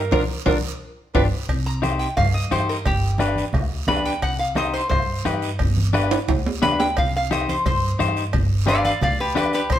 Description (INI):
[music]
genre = latin, cumbia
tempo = 175 BPM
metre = 4/4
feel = straight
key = C harmonic minor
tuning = A4 = 440 Hz
[part]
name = growling clarinet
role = second line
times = 0.0-1.2 s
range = Bb4 to B4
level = -26 LUFS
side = right 5 dB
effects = none
[part]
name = upright bass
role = bass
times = 0.0-9.8 s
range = G1 to G2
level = -25 LUFS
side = right 1 dB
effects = none
[part]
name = semi-hollow electric guitar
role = accompaniment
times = 0.1-9.6 s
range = D4 to C5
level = -24 LUFS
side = left 4 dB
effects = none
[part]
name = bombo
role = percussion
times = 0.1-9.8 s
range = none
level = -25 LUFS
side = left 1 dB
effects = none
[part]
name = congas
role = percussion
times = 0.1-9.8 s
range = none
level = -30 LUFS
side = right 2 dB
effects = none
[part]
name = guiro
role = percussion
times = 0.1-9.8 s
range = none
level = -36 LUFS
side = right 7 dB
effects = none
[part]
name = timbales and cowbell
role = percussion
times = 0.1-9.8 s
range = none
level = -27 LUFS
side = right 6 dB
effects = none
[part]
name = metal-body resonator slide guitar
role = melody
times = 1.7-9.8 s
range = G4 to B5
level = -23 LUFS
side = equal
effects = none
[sound]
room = moderate stone room reverb, RT60 1.0 s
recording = band playing live in one room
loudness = -19 LUFS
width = side -11 dB against mid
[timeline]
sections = 0.0-1.5 A section; 1.5-9.8 B section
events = clarinet solo 0.0-1.5; band accent 0.1-1.5; drum fill 1.0-1.5, 6.1-7.0; resonator guitar played with a steel bar solo 1.5-9.8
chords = 0.1 Bb; 0.8 G7(no3); 1.5 Cm; 2.9 G; 4.2 Cm; 5.6 G; 7.0 Cm; 8.3 G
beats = | 0.12 0.46 0.81 1.15 | 1.49 1.83 2.18 2.52 | 2.86 3.20 3.54 3.89 | 4.23 4.57 4.91 5.26 | 5.60 5.94 6.28 6.63 | 6.97 7.31 7.65 7.99 | 8.34 8.68 9.02 9.36 | 9.70